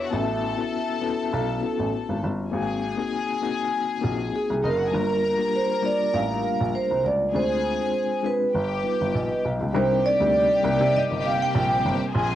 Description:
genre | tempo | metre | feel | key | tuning
soul | 100 BPM | 4/4 | swing 54% on 16ths | unclear | A4 = 441 Hz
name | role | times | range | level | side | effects
vibraphone with soft mallets | melody | 0.0-11.8 s | Ab4 to G5 | -24 LUFS | right 3 dB | none
rich studio string section | second line | 0.0-12.3 s | Eb4 to Bb5 | -30 LUFS | left 6 dB | cassette tape, analog delay
reed electric piano | accompaniment | 0.0-12.2 s | G3 to B4 | -28 LUFS | left 6 dB | overdrive, fast tremolo, cassette tape
dark baby grand piano | bass | 0.1-12.3 s | Gb1 to C3 | -27 LUFS | right 1 dB | none
string machine, violins | sustained chords | 9.7-12.3 s | C3 to C4 | -30 LUFS | right 1 dB | ensemble chorus, cassette tape
glockenspiel with rubber mallets | texture | 9.7-12.3 s | G5 to C6 | -39 LUFS | right 9 dB | none
room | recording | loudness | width
moderate small room reverb, RT60 0.5 s | home recording on cassette | -21 LUFS | side -12 dB against mid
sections
0.0-9.7 A section; 9.7-12.3 B section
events
none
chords
0.1 A6; 2.5 Ab9; 4.9 Gm7; 7.3 Dm7b5; 8.5 G7b13; 9.7 Cm9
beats
| 0.12 0.72 1.32 1.93 | 2.53 3.13 3.73 4.33 | 4.93 5.53 6.13 6.74 | 7.34 7.94 8.54 9.14 | 9.74 10.34 10.94 11.54 | 12.14

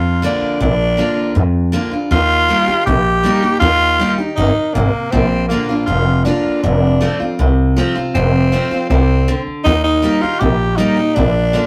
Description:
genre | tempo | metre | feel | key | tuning
rockabilly | 159 BPM | 4/4 | straight | Bb major | A4 = 440 Hz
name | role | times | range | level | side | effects
raspy tenor saxophone | melody | 0.0-11.7 s | Bb3 to G4 | -19 LUFS | equal | none
picked steel-string acoustic guitar | accompaniment | 0.0-11.7 s | F2 to G4 | -22 LUFS | equal | none
upright bass | bass | 0.0-11.6 s | F1 to F2 | -17 LUFS | equal | none
room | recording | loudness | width
moderate small room reverb, RT60 0.5 s | rough rehearsal-room recording, tube saturation | -15 LUFS | mono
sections
0.0-11.7 A section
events
none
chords
0.0 Bb; 2.1 Eb; 5.1 Bb; 6.6 F; 9.7 Eb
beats
0.24 | 0.61 0.99 1.37 1.74 | 2.12 2.50 2.87 3.25 | 3.63 4.00 4.38 4.76 | 5.13 5.51 5.89 6.26 | 6.64 7.02 7.39 7.77 | 8.15 8.53 8.90 9.28 | 9.66 10.04 10.41 10.79 | 11.17 11.55

